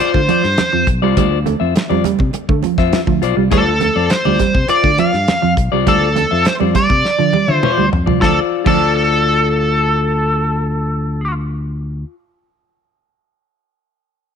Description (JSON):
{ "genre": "funk", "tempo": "102 BPM", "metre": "4/4", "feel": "straight", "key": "D minor", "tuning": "A4 = 440 Hz", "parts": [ { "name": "nasal lead guitar with a parked wah", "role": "melody", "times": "0.0-11.3 s", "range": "A4 to F5", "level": "-16 LUFS", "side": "equal", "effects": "overdrive" }, { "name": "clean electric guitar", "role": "accompaniment", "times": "0.0-12.2 s", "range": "F4 to E5", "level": "-20 LUFS", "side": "left 14 dB", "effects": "none" }, { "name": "electric guitar at the edge of break-up", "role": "riff", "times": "0.0-8.8 s", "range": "F3 to A3", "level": "-19 LUFS", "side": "right 11 dB", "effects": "none" }, { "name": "fingered electric bass", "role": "bass", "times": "0.0-12.0 s", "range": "B1 to D3", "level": "-19 LUFS", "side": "left 1 dB", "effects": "none" }, { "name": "congas", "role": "percussion", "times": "0.0-8.8 s", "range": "none", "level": "-26 LUFS", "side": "right 10 dB", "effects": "none" }, { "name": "damped 70s drum kit", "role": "drums", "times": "0.1-8.8 s", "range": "crash cymbal, hi-hat, kick drum, snare drum, toms", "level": "-18 LUFS", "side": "left 1 dB", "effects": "none" } ], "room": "light reverb", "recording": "1960s-style stereo with parts hard left and right", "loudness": "-12 LUFS", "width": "side -7 dB against mid", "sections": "0.0-8.2 A section; 8.2-10.6 B section", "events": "drum fill 7.0-8.2", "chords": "0.0 Dm7" }